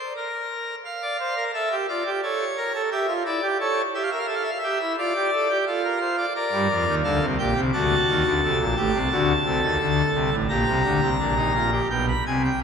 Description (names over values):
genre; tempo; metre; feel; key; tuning
classical, baroque-style 3-part fugue for pipe organ; 87 BPM; 4/4; straight; G minor; A4 = 439 Hz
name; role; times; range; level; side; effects
pipe organ, full organ; solo; 0.0-12.6 s; A1 to B5; -21 LUFS; equal; none
room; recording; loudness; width
wet cathedral reverb, RT60 4.7 s; minimal, uncompressed stereo recording; -21 LUFS; side -6 dB against mid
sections
0.0-11.9 A section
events
none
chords
0.0 N.C.; 0.8 Dm; 2.2 A; 3.6 A7; 5.0 Dm/F; 6.4 Gm; 7.7 D; 9.1 D7; 10.5 Gm/Bb; 11.9 G/B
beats
0.15 | 0.84 1.54 2.23 2.91 | 3.60 4.29 4.98 5.67 | 6.36 7.05 7.74 8.43 | 9.12 9.81 10.50 11.20 | 11.91